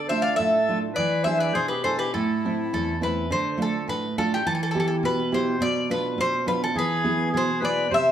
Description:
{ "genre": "greek folk, Greek bouzouki band", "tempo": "104 BPM", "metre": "2/4", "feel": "straight", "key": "unclear", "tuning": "A4 = 440 Hz", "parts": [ { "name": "Greek bouzouki", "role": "melody", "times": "0.0-8.1 s", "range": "G4 to F5", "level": "-25 LUFS", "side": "left 1 dB", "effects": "none" }, { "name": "accordion", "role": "second line", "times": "0.0-3.0, 6.8-8.1 s", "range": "E4 to D5", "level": "-28 LUFS", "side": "left 1 dB", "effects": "none" }, { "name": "nylon-string guitar", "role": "accompaniment", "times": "0.0-8.1 s", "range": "E2 to G#4", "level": "-25 LUFS", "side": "right 2 dB", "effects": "none" } ], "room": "wet large studio reverb, RT60 0.9 s", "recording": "band playing live in one room", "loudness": "-22 LUFS", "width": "side -10 dB against mid", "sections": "0.0-3.3 A section; 3.3-8.1 B section", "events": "none", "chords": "0.0 Dm; 1.0 E7; 2.2 Am; 3.3 Dm; 4.5 Em; 5.6 Bdim; 6.8 E" }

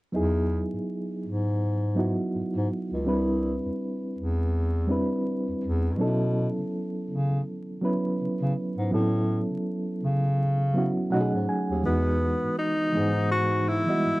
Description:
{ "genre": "R&B, neo-soul", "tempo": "82 BPM", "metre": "4/4", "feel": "swing 57% on 16ths", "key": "E major", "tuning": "A4 = 440 Hz", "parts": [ { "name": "reed electric piano", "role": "accompaniment", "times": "0.1-14.2 s", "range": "E3 to G#5", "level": "-27 LUFS", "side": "right 1 dB", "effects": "fast tremolo" }, { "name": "mellow bass clarinet", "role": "bass", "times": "0.2-14.1 s", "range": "C2 to C#3", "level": "-26 LUFS", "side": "equal", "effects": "transformer saturation" }, { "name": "mellow tenor saxophone", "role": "melody", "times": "11.9-14.2 s", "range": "B3 to F#4", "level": "-26 LUFS", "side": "left 1 dB", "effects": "none" } ], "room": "small room ambience", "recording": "dry, close 1970s-style studio recording, vinyl crackle", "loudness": "-24 LUFS", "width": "side -20 dB against mid", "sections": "0.1-11.8 A section; 11.8-14.2 B section", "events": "reed electric piano fill 10.7-11.8", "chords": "0.1 Emaj7; 3.1 Cmaj9; 6.0 B9sus4; 8.9 A69; 11.1 B13; 11.8 Emaj7" }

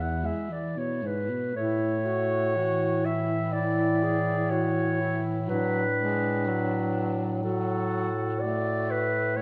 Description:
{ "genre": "classical, lyrical piece for single-reed quartet", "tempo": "61 BPM", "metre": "4/4", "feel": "rubato", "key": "unclear", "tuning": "A4 = 439 Hz", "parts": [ { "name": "warm clarinet", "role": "melody", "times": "0.0-9.4 s", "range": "A4 to F#5", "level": "-32 LUFS", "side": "equal", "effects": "none" }, { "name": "clear alto saxophone", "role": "second line", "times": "0.0-9.4 s", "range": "D4 to G#4", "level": "-36 LUFS", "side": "equal", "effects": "none" }, { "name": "warm tenor saxophone", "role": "accompaniment", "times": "0.0-9.4 s", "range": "G#2 to A3", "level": "-33 LUFS", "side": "equal", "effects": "none" }, { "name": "warm bass clarinet", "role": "bass", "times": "0.0-9.4 s", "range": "E2 to A2", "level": "-33 LUFS", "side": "equal", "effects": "none" } ], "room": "wet recital hall reverb, RT60 1.6 s", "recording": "none", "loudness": "-27 LUFS", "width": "mono", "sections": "0.0-9.4 A section", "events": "none", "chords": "0.0 E; 1.5 A; 5.5 D/A" }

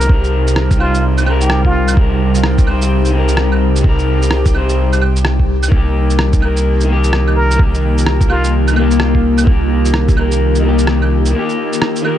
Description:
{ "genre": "future garage", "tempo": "128 BPM", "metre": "4/4", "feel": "swing 62% on 16ths", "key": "C minor", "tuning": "A4 = 440 Hz", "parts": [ { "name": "trumpet with plunger mute", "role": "melody", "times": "0.0-2.0, 7.4-8.5 s", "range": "F4 to Bb4", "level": "-23 LUFS", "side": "equal", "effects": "tape echo" }, { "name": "electric guitar through a small old amp", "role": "accompaniment", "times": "0.0-12.2 s", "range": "Eb3 to C5", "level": "-19 LUFS", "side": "left 2 dB", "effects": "sidechain pumping, analog delay" }, { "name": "ethereal airy pad", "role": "sustained chords", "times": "0.3-12.2 s", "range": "C3 to G4", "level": "-19 LUFS", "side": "left 1 dB", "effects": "ensemble chorus, built-in reverb, phaser, sidechain pumping" }, { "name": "warm sub bass", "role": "bass", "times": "0.0-11.3 s", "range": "C2", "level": "-14 LUFS", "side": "equal", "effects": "sidechain pumping" }, { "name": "electronic shaker, rim click and claves", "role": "drums", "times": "0.0-12.2 s", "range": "none", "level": "-20 LUFS", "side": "right 2 dB", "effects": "vintage 12-bit sampler grit" }, { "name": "backwards swelling texture", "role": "texture", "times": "0.0-12.2 s", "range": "G4 to G5", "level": "-27 LUFS", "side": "right 1 dB", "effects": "built-in reverb" }, { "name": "electronic kick drum", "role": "drums", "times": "0.1-10.2 s", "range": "none", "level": "-13 LUFS", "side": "equal", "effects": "vintage 12-bit sampler grit" } ], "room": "light reverb", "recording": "none", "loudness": "-11 LUFS", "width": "side -11 dB against mid", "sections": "0.0-12.2 A section", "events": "break 11.3-12.2", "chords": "0.0 Cm7" }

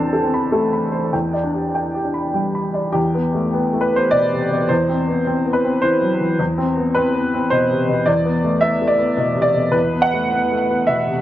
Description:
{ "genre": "neoclassical minimalist piano", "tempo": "97-110 BPM", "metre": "3/4", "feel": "rubato", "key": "E minor", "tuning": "A4 = 440 Hz", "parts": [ { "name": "clear upright piano", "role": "solo", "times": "0.0-11.2 s", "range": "E2 to B5", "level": "-16 LUFS", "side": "equal", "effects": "tape echo" } ], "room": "little or no reverb", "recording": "dry, close 1970s-style studio recording", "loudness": "-16 LUFS", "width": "side -13 dB against mid", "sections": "0.0-3.0 A section; 3.0-11.2 B section", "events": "none", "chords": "0.0 Amadd9/E; 1.1 G/E; 3.0 Em; 4.7 C/E; 6.4 Cmaj7/E; 8.1 E5" }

